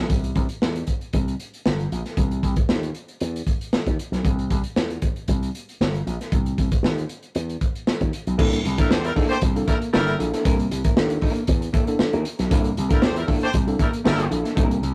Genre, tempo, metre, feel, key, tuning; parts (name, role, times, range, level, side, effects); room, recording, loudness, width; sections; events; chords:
funk; 116 BPM; 4/4; straight; C mixolydian; A4 = 440 Hz
slap bass with an envelope filter; bass; 0.0-14.9 s; G1 to E2; -27 LUFS; equal
crunchy breakbeat drum kit; drums; 0.1-14.9 s; crash cymbal, hi-hat, kick drum, snare drum; -25 LUFS; equal
mellow electric guitar; accompaniment; 8.4-14.9 s; Bb3 to Bb4; -32 LUFS; equal; spring reverb
tine electric piano; stabs; 8.4-14.7 s; Bb3 to A4; -29 LUFS; equal
clear horn section; second line; 8.8-14.3 s; G3 to C5; -28 LUFS; equal
little or no reverb; rough rehearsal-room recording, tube saturation; -23 LUFS; mono
0.1-8.4 A section; 8.4-14.9 B section
0.1 C; 8.4 C13